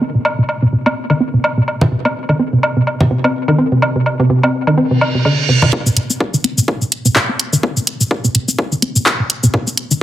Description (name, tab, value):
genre	minimal techno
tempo	126 BPM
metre	4/4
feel	swing 57% on 16ths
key	C minor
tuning	A4 = 439 Hz
part	resonant blip pluck	riff	0.0-9.9 s	C3 to C4	-15 LUFS	equal	chorus, sidechain pumping, tape echo
part	woodblock and congas	percussion	0.2-5.7 s	none	-18 LUFS	equal	tape echo
part	reverse cymbal	sound effects	5.0-5.7 s	none	-19 LUFS	right 6 dB	none
part	electronic kick drum	drums	5.7-9.6 s	none	-19 LUFS	left 1 dB	overdrive, high-pass filter on kick, high-pass filter on room
part	house drum kit	drums	5.9-10.0 s	handclaps, hi-hat, shaker	-16 LUFS	left 1 dB	overdrive, high-pass filter on hats, low-pass filter on hats, high-pass filter on perc, low-pass filter on perc, high-pass filter on snare, low-pass filter on snare, high-pass filter on room, low-pass filter on room
room	moderate plate reverb, RT60 2.1 s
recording	none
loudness	-12 LUFS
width	side -13 dB against mid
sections	0.0-5.7 A section; 5.7-10.0 B section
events	filter sweep on synth arpeggio sound 0.0-5.7, 5.7-10.0; reverse cymbal 5.0-5.7; build-up 5.7-10.0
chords	none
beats	| 0.01 0.49 0.97 1.44 | 1.92 2.40 2.87 3.35 | 3.82 4.30 4.78 5.25 | 5.73 6.21 6.68 7.16 | 7.63 8.11 8.59 9.06 | 9.54